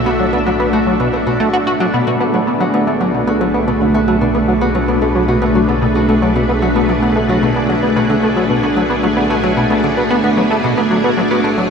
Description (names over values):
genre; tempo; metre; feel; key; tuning
ambient, sequencer-driven space music; 112 BPM; 4/4; straight; B dorian; A4 = 439 Hz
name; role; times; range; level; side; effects
string machine, full ensemble; sustained chords; 0.0-11.7 s; A3 to E5; -16 LUFS; equal; ensemble chorus
Celtic harp; arpeggios; 0.0-11.7 s; A3 to F#4; -18 LUFS; left 1 dB; auto-pan, ping-pong delay
analog drone; bass; 0.0-11.7 s; B1; -24 LUFS; right 1 dB; chorus
plucky analog bass; riff; 0.1-11.7 s; B2 to F#4; -17 LUFS; equal; wide subtle chorus, ping-pong delay
room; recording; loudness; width
wet huge ambient reverb, RT60 8.6 s; dark, warm production; -12 LUFS; side -6 dB against mid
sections
0.0-11.7 A section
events
none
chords
0.0 Bm7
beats
0.46 1.00 1.53 | 2.07 2.60 3.14 3.67 | 4.21 4.75 5.28 5.82 | 6.35 6.89 7.42 7.96 | 8.50 9.03 9.57 10.10 | 10.64 11.18